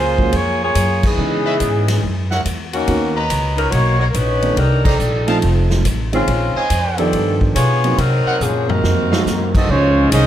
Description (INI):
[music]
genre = jazz, big band swing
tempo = 141 BPM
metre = 4/4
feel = swing 66% on 8ths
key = Bb minor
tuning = A4 = 440 Hz
[part]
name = mellow saxophone section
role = melody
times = 0.0-9.5 s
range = Eb3 to Db5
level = -19 LUFS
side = left 1 dB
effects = none
[part]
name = clear trumpet section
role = stabs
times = 0.0-9.2 s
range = Gb4 to Bb5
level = -24 LUFS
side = right 1 dB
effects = none
[part]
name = upright bass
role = bass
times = 0.0-10.3 s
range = F1 to Db3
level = -18 LUFS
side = equal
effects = none
[part]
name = warm upright piano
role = accompaniment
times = 0.2-9.3 s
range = D#3 to A4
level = -23 LUFS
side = right 4 dB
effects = none
[part]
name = swinging big-band drum kit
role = drums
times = 0.2-10.2 s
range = crash cymbal, hi-hat, kick drum, ride cymbal, snare drum, toms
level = -22 LUFS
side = equal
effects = none
[part]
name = clear trombone section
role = second line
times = 8.7-10.3 s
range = C3 to Eb4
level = -19 LUFS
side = right 2 dB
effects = none
[part]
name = clear trumpet section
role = melody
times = 9.6-10.3 s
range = Ab3 to Eb5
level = -17 LUFS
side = right 2 dB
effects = none
[part]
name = mellow saxophone section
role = sustained chords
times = 9.7-10.3 s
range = Ab3 to Eb4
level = -22 LUFS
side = left 3 dB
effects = none
[sound]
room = moderate recital hall reverb, RT60 1.7 s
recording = none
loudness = -14 LUFS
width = side -11 dB against mid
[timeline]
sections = 0.0-9.7 A section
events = band accent 1.0, 4.8; drum fill 8.4-9.3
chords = 0.0 Gbmaj9; 1.2 Dbm9; 2.0 Gb7(no3); 2.9 Bmaj9; 4.6 Cm9; 5.4 F7; 6.3 Bbm11; 7.1 G7b9; 8.0 Cm7b5; 8.8 F7b9; 9.7 Bbm11